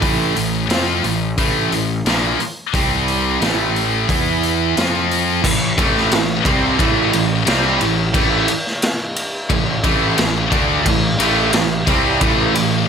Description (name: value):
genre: hard rock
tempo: 89 BPM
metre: 4/4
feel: straight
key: A minor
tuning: A4 = 440 Hz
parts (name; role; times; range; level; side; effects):
- overdriven semi-hollow guitar; riff; 0.0-12.8 s; A2 to F4; -22 LUFS; right 13 dB; none
- scooped high-gain guitar; riff; 0.0-12.8 s; A2 to F4; -20 LUFS; left 13 dB; distortion
- fuzz picked electric bass; bass; 0.0-12.9 s; A1 to F2; -22 LUFS; equal; overdrive
- raw garage drum kit; drums; 0.0-12.7 s; crash cymbal, hi-hat, kick drum, ride cymbal, snare drum; -20 LUFS; equal; none
- scooped high-gain guitar; riff; 5.4-12.8 s; A2 to D4; -22 LUFS; right 1 dB; distortion
room: light reverb, small room ambience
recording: none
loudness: -14 LUFS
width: side -7 dB against mid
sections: 0.0-5.4 A section; 5.4-12.9 B section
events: none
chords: 0.0 Am; 2.7 C5; 3.4 A5; 4.1 E5; 4.8 F5; 5.4 Am